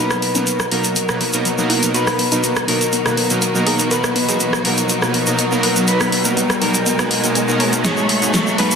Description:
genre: progressive house.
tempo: 122 BPM.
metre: 4/4.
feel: straight.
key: B major.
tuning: A4 = 438 Hz.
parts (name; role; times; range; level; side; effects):
electric guitar at the edge of break-up; melody; 0.0-8.8 s; A#4 to C#5; -22 LUFS; left 2 dB; vintage 12-bit sampler grit, tape echo.
clear studio string section; sustained chords; 0.0-8.8 s; B2 to F#4; -25 LUFS; equal; none.
glassy wavetable pluck; arpeggios; 0.0-8.7 s; F#3 to C#5; -25 LUFS; left 2 dB; chorus, tape echo.
soft supersaw; stabs; 0.0-8.7 s; G#2 to B4; -20 LUFS; right 2 dB; none.
riser; sound effects; 2.6-8.8 s; none; -25 LUFS; equal; none.
deep house drum kit; drums; 0.1-8.8 s; hi-hat, rim click, snare drum; -20 LUFS; equal; soft clipping on snare.
egg shaker; percussion; 0.1-8.8 s; none; -23 LUFS; right 2 dB; none.
room: light reverb.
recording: dense, heavily limited modern master.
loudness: -14 LUFS.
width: side -6 dB against mid.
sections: 0.0-8.8 A section.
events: build-up 0.0-8.8; filter sweep on synth arpeggio sound 0.0-8.8; riser 2.6-8.8; drum fill 7.8-8.8.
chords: 0.0 Bmaj7; 7.8 G#m7.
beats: 0.47 0.96 1.45 | 1.94 2.44 2.93 3.42 | 3.91 4.40 4.89 5.39 | 5.88 6.37 6.86 7.35 | 7.85 8.34.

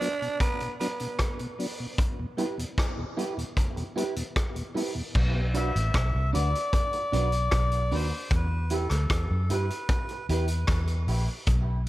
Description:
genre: dub reggae.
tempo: 76 BPM.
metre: 4/4.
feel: straight.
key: B phrygian.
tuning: A4 = 435 Hz.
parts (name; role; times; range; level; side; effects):
growling tenor saxophone; second line; 0.0-1.5 s; B3 to D4; -32 LUFS; right 3 dB; tape echo.
mellow tonewheel organ; accompaniment; 0.0-5.4 s; E2 to E4; -35 LUFS; left 1 dB; slow rotary speaker, tape echo.
vintage drum kit; drums; 0.0-11.9 s; crash cymbal, hi-hat, kick drum, rim click; -29 LUFS; equal; none.
electric guitar at the edge of break-up; accompaniment; 2.4-11.2 s; D4 to B4; -34 LUFS; right 3 dB; lush chorus, high-pass filter, tape echo.
vintage muted fingered electric bass; bass; 5.2-11.9 s; A1 to G2; -26 LUFS; equal; none.
melodica; melody; 5.6-10.3 s; A4 to E5; -32 LUFS; left 2 dB; tape echo.
room: small room ambience.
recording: none.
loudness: -25 LUFS.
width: side -16 dB against mid.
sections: 0.0-5.1 A section; 5.1-11.9 A section.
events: break 0.0-5.1; filter sweep on clean electric guitar 8.3-11.9.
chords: 0.0 Bm; 2.0 Em; 5.1 Bm; 8.3 Em.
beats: 0.40 1.19 | 1.99 2.77 3.57 4.36 | 5.15 5.94 6.73 7.52 | 8.31 9.11 9.90 10.69 | 11.48.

